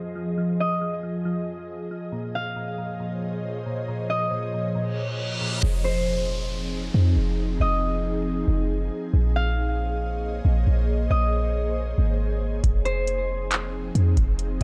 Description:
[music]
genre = hip hop, atmospheric cloud-rap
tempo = 137 BPM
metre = 4/4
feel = half-time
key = Bb minor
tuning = A4 = 441 Hz
[part]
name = concert harp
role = melody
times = 0.0-14.6 s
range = C5 to F5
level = -33 LUFS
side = equal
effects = low-pass filter, digital delay
[part]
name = ethereal airy pad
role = sustained chords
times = 0.0-14.6 s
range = F2 to Eb5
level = -33 LUFS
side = equal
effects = ensemble chorus, built-in reverb, sidechain pumping, low-pass filter
[part]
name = soft electric-piano-like synth keys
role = arpeggios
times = 0.0-5.6 s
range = Bb2 to F3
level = -34 LUFS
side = equal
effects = chorus, phaser, low-pass filter, digital delay
[part]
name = reverse cymbal and downlifter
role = sound effects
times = 4.9-9.1 s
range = none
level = -36 LUFS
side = equal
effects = none
[part]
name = clean 808-style bass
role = bass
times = 5.6-14.6 s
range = F1 to F2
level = -25 LUFS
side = equal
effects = none
[part]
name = booming analog drum machine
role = drums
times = 12.6-14.6 s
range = handclaps, hi-hat, kick drum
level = -26 LUFS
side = equal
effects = none
[sound]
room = light reverb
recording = none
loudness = -25 LUFS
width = mono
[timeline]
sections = 0.0-5.6 A section; 5.6-14.6 B section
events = reverse cymbal 4.9-5.6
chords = 0.0 Fm7; 2.1 Bbm11; 5.6 Fm7; 9.1 Bbm11; 12.6 Fm7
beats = | 0.38 0.81 1.25 1.69 | 2.13 2.56 3.00 3.44 | 3.88 4.32 4.75 5.19 | 5.63 6.07 6.51 6.94 | 7.38 7.82 8.26 8.70 | 9.13 9.57 10.01 10.45 | 10.89 11.32 11.76 12.20 | 12.64 13.08 13.51 13.95 | 14.39

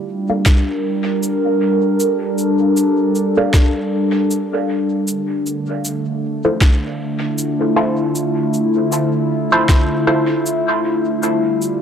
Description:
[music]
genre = ambient dub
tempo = 78 BPM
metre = 4/4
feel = swing 57% on 16ths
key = D minor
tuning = A4 = 439 Hz
[part]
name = warbly tape-like pad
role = sustained chords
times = 0.0-11.8 s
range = D3 to Bb4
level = -16 LUFS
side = equal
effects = chorus, built-in reverb
[part]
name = filtered dub chord stab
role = stabs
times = 0.3-10.2 s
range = E4 to F5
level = -20 LUFS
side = right 1 dB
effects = phaser, dub echo
[part]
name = electronic kick drum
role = drums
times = 0.5-9.9 s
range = none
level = -12 LUFS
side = equal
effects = none
[part]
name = electronic snare drum and cabasa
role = drums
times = 0.5-11.8 s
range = none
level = -24 LUFS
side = equal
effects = dub echo
[sound]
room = moderate spring reverb, RT60 2.2 s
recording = none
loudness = -15 LUFS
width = side -8 dB against mid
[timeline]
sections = 0.0-11.8 A section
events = none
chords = 0.0 Gm9; 5.1 Dm9; 11.2 G7(no3)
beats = 0.46 1.23 | 2.00 2.77 3.54 4.30 | 5.07 5.84 6.61 7.38 | 8.15 8.92 9.69 10.46 | 11.23

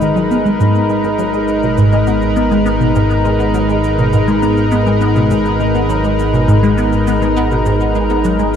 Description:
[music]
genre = ambient, sequencer-driven space music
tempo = 102 BPM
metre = 4/4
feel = straight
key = G# minor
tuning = A4 = 441 Hz
[part]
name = lush unison pad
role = sustained chords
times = 0.0-8.6 s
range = G#3 to B4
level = -15 LUFS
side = equal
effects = chorus
[part]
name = vibraphone with medium mallets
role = arpeggios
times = 0.0-8.6 s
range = G#3 to G#5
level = -26 LUFS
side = left 3 dB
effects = none
[part]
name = resonant blip pluck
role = riff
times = 0.0-8.5 s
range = G#2 to B3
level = -15 LUFS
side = equal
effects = phaser, ensemble chorus, tape echo
[part]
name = fat analog bass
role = bass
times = 0.0-8.6 s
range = G#1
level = -19 LUFS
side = equal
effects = none
[part]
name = cabasa and congas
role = percussion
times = 0.0-8.6 s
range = none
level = -42 LUFS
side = right 3 dB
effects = tape echo
[sound]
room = wet plate reverb, RT60 3.4 s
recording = dark, warm production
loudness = -11 LUFS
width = side -8 dB against mid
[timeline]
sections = 0.0-8.6 A section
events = none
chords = 0.0 G#madd9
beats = 0.01 | 0.60 1.19 1.78 2.37 | 2.96 3.54 4.13 4.72 | 5.31 5.90 6.48 7.07 | 7.66 8.25

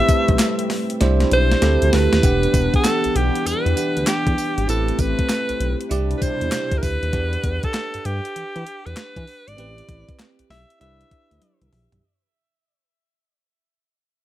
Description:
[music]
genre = R&B, new jack swing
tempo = 98 BPM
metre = 4/4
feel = swing 65% on 16ths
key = E minor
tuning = A4 = 443 Hz
[part]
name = edgy alto saxophone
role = melody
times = 0.0-11.7 s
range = G4 to E5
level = -24 LUFS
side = equal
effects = ping-pong delay
[part]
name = bell-like tine electric piano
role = accompaniment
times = 0.0-12.1 s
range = C4 to F#5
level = -25 LUFS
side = right 6 dB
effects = phaser
[part]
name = chorused pulse-width pad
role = sustained chords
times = 0.0-7.1 s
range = B2 to F#5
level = -26 LUFS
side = left 2 dB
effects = none
[part]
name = clean 12-bit digital drum machine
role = drums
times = 0.1-12.0 s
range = handclaps, hi-hat, kick drum, snare drum, tambourine, toms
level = -22 LUFS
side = equal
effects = none
[part]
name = smooth synth bass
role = bass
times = 0.3-12.0 s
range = E1 to E3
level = -21 LUFS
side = equal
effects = none
[sound]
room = digital ambience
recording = none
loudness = -17 LUFS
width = side -13 dB against mid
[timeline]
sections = 0.0-2.2 A section; 2.2-12.0 B section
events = drum fill 1.0-2.2, 11.4-12.0; fade-out 2.2-12.0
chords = 0.0 Am9; 1.0 Cmaj9; 1.6 D9sus4; 2.2 Em9; 4.7 Am9; 5.9 Cmaj9; 7.1 Em9; 9.6 Am9; 10.8 Cmaj9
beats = 0.40 1.01 1.62 | 2.23 2.85 3.46 4.07 | 4.68 5.29 5.91 6.52 | 7.13 7.74 8.36 8.97 | 9.58 10.19 10.80 11.42

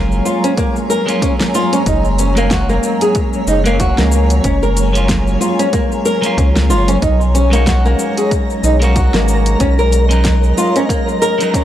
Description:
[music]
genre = organic downtempo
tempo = 93 BPM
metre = 4/4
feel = swing 57% on 16ths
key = unclear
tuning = A4 = 441 Hz
[part]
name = clean electric guitar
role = accompaniment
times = 0.0-11.6 s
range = F#3 to F5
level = -21 LUFS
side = right 2 dB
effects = sidechain pumping, analog delay
[part]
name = granular cloud pad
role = sustained chords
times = 0.0-11.6 s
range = Gb3 to Bb5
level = -21 LUFS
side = equal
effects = built-in reverb, sidechain pumping
[part]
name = flamenco guitar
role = arpeggios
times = 0.0-11.6 s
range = Bb3 to Bb4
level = -17 LUFS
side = equal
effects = analog delay
[part]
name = warm sub bass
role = bass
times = 0.0-10.5 s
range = Gb1 to Db2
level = -14 LUFS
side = equal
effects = tube saturation, sidechain pumping
[part]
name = deep house drum kit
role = drums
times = 0.1-11.6 s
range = cabasa, hi-hat, snare drum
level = -21 LUFS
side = left 1 dB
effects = overdrive, small room ambience
[part]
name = electronic kick drum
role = drums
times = 0.6-11.6 s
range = none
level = -19 LUFS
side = equal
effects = overdrive, small room ambience
[part]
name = twinkling granular texture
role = texture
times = 7.4-11.6 s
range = Bb4 to Bb5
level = -24 LUFS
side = right 2 dB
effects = built-in reverb
[sound]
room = light reverb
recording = dry, gritty hardware recording, cassette tape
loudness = -11 LUFS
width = side -11 dB against mid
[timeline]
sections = 0.0-11.6 A section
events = none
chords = 0.0 Gbmaj9; 7.0 B69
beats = 0.57 1.22 | 1.86 2.51 3.15 3.80 | 4.45 5.09 5.74 6.38 | 7.03 7.67 8.32 8.96 | 9.61 10.25 10.90 11.54

